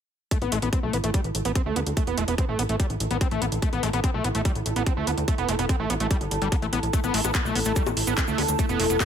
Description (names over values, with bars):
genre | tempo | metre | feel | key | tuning
psychedelic trance | 145 BPM | 4/4 | straight | unclear | A4 = 440 Hz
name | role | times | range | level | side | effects
screaming distorted acid line | riff | 0.3-9.1 s | G3 to C4 | -28 LUFS | moving between left 9 dB and right 8 dB | distortion, chorus, auto-pan, sidechain pumping, dub echo
big-room dance drum kit | drums | 0.3-9.1 s | bongos, handclaps, hi-hat | -30 LUFS | left 1 dB | overdrive
electronic kick drum | drums | 0.3-9.1 s | none | -24 LUFS | equal | overdrive
warbly tape-like pad | texture | 0.3-9.1 s | E4 to A5 | -32 LUFS | right 2 dB | chorus, built-in reverb, sidechain pumping
plucky analog bass | bass | 0.4-9.0 s | E1 to D2 | -28 LUFS | equal | none
overtone-sweeping drone | sustained chords | 7.6-9.1 s | A3 to E4 | -31 LUFS | left 2 dB | chorus, built-in reverb, phaser, vintage 12-bit sampler grit, sidechain pumping
cabasa | percussion | 6.9-9.1 s | none | -35 LUFS | right 1 dB | none
room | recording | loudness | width
light reverb, digital ambience | none | -22 LUFS | side -8 dB against mid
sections
0.3-9.1 A section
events
filter sweep on acid bass 0.3-9.1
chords
0.3 A5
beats
| 0.31 0.73 1.14 1.55 | 1.97 2.38 2.80 3.21 | 3.62 4.04 4.45 4.87 | 5.28 5.69 6.11 6.52 | 6.93 7.35 7.76 8.18 | 8.59 9.00